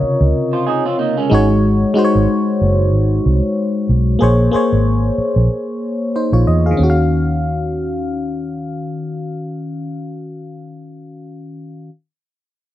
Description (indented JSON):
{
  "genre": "R&B",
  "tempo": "93 BPM",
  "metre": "4/4",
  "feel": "swing 57% on 16ths",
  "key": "Eb dorian",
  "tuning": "A4 = 441 Hz",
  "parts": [
    { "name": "FM electric piano", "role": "accompaniment", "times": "0.0-11.9 s", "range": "C3 to F5", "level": "-17 LUFS", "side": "left 2 dB", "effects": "chorus" },
    { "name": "vintage muted fingered electric bass", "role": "bass", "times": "0.0-10.2 s", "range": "Gb1 to Fb2", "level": "-15 LUFS", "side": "right 1 dB", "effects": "none" },
    { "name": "electric guitar through a small old amp", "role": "second line", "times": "0.5-1.5 s", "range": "Ab3 to C5", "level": "-18 LUFS", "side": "right 6 dB", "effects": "none" }
  ],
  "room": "little or no reverb",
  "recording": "dry, close 1970s-style studio recording",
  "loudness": "-14 LUFS",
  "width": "side -13 dB against mid",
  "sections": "0.0-6.8 A section; 6.8-9.4 B section",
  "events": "none",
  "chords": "0.0 Dbmaj13; 1.3 Ab7sus4; 4.2 Bbm9; 6.8 Ebm9"
}